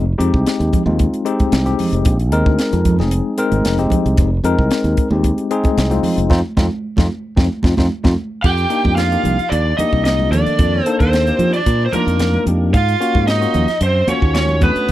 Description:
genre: electric jazz fusion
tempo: 112 BPM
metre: 4/4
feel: straight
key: F minor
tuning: A4 = 442 Hz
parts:
  - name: tine electric piano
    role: accompaniment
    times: 0.0-14.9 s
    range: Eb3 to Bb4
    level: -19 LUFS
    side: left 3 dB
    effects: medium stereo tremolo
  - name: modern bright fingered electric bass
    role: bass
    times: 0.0-14.9 s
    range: F1 to F3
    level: -17 LUFS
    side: equal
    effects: none
  - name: crisp fusion drum kit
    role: drums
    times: 0.2-14.9 s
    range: crash cymbal, hi-hat, kick drum, snare drum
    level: -18 LUFS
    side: equal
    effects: none
  - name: congas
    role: percussion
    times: 0.7-14.7 s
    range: none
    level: -24 LUFS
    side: right 4 dB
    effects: none
  - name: lead guitar through a small cranked amp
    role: melody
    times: 8.4-14.9 s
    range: Bb4 to G5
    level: -19 LUFS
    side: left 1 dB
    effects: overdrive
  - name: edgy tenor saxophone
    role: second line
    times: 8.5-14.9 s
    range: Bb3 to G4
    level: -24 LUFS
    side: right 9 dB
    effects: none
room: light reverb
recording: dry, close 1970s-style studio recording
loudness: -14 LUFS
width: side -14 dB against mid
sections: 0.0-8.4 A section; 8.4-14.9 B section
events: band accent 6.3-8.4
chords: 0.0 Fm9; 8.4 F13sus4; 12.7 Ab13sus4

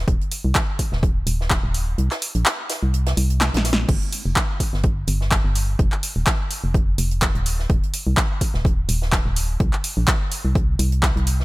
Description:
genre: piano house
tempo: 126 BPM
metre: 4/4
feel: swing 55% on 16ths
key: unclear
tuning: A4 = 435 Hz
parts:
  - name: organ-like FM bass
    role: bass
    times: 0.0-11.4 s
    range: Eb1 to C2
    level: -21 LUFS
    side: equal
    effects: sidechain pumping
  - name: compact cocktail drum kit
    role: drums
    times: 0.1-11.4 s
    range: hi-hat, snare drum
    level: -32 LUFS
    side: right 2 dB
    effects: sidechain pumping on hats, high-pass filter on hats, high-pass filter on snare, high-pass filter on room
  - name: electronic kick drum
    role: drums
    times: 0.1-11.1 s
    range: none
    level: -21 LUFS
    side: equal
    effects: overdrive
  - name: punchy analog drum machine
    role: drums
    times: 0.3-11.4 s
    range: crash cymbal, handclaps, hi-hat, snare drum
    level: -23 LUFS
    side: equal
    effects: overdrive
room: small room ambience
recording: none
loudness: -18 LUFS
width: side -20 dB against mid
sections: 0.0-11.4 A section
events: kick drops out 2.0-3.9; drum fill 3.4-3.9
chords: none

